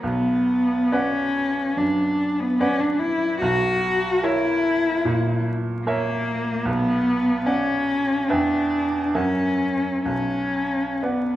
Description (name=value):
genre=classical, romantic duo for cello and grand piano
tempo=72 BPM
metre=4/4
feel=uneven beats, rubato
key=B minor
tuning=A4 = 440 Hz
part: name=warm cello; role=melody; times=0.0-11.4 s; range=A#3 to F#4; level=-21 LUFS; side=left 1 dB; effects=none
part: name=bright baby grand piano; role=accompaniment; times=0.0-11.4 s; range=B1 to G5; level=-26 LUFS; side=right 2 dB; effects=none
room=wet recital hall reverb, RT60 1.4 s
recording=dark, warm production, vinyl crackle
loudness=-20 LUFS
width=side -14 dB against mid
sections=0.0-11.4 A section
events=none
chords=0.0 Bm; 3.4 A#dim/B; 6.7 Bm; 8.3 Em7; 9.1 F#7; 10.1 Bm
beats=| 0.02 0.91 1.76 2.59 | 3.41 4.23 5.05 5.86 | 6.65 7.46 8.28 9.14 | 10.06 11.02